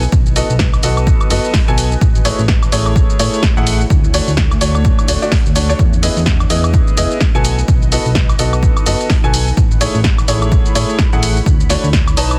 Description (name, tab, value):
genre	piano house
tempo	127 BPM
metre	4/4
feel	swing 59% on 16ths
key	unclear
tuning	A4 = 442 Hz
part	solid FM bass	bass	0.0-12.4 s	D1 to A2	-19 LUFS	equal	sidechain pumping
part	punchy analog drum machine	drums	0.0-12.4 s	hi-hat, shaker, snare drum, woodblock	-22 LUFS	equal	small room ambience
part	granular cloud pad	texture	0.0-12.4 s	A3 to B5	-30 LUFS	equal	built-in reverb, sidechain pumping
part	electronic kick drum	drums	0.1-12.0 s	none	-16 LUFS	equal	small room ambience
part	clear upright piano	riff	0.4-12.4 s	A3 to A5	-22 LUFS	equal	sidechain pumping, tape echo
room	digital ambience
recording	dense, heavily limited modern master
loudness	-13 LUFS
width	mono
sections	0.0-12.4 A section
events	none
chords	0.0 B7; 2.0 Amaj7; 3.9 Dmaj7; 5.8 Emaj7; 7.4 B7; 9.6 Amaj7; 11.5 Dmaj7